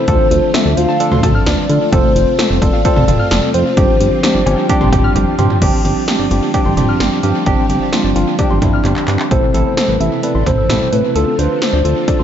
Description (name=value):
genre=synth-pop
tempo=130 BPM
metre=4/4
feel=straight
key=unclear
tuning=A4 = 440 Hz
part: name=hollow clarinet-like synth lead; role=melody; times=0.0-5.1, 9.3-12.2 s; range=A4 to F5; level=-18 LUFS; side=left 1 dB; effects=chorus, analog delay
part: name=tine electric piano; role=accompaniment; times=0.0-12.2 s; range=C4 to C6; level=-18 LUFS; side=right 2 dB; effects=medium stereo tremolo, analog delay
part: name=string machine, violas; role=sustained chords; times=0.0-12.2 s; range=B2 to F4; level=-21 LUFS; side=equal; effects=ensemble chorus
part: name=warbly dusty pluck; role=arpeggios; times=0.0-12.2 s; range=B2 to F6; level=-24 LUFS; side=left 4 dB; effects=chorus, analog delay
part: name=chorused synth bass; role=bass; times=0.1-12.2 s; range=F1 to D3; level=-16 LUFS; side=equal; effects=none
part: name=80s electronic pad drums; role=drums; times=0.1-12.2 s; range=cowbell, crash cymbal, handclaps, hi-hat, kick drum, snare drum, toms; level=-16 LUFS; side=equal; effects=gated reverb on snare and toms, analog delay
room=light reverb, digital ambience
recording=echo-heavy mix, nothing above 7.7 kHz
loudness=-11 LUFS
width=side -9 dB against mid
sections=0.0-5.6 A section; 5.6-9.3 B section; 9.3-12.2 C section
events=tine electric piano fill 4.9-5.6; drum fill 5.2-5.6, 8.8-9.3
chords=0.1 Dm7; 1.9 F; 3.8 G7sus4; 9.3 Amadd9; 11.2 Dm7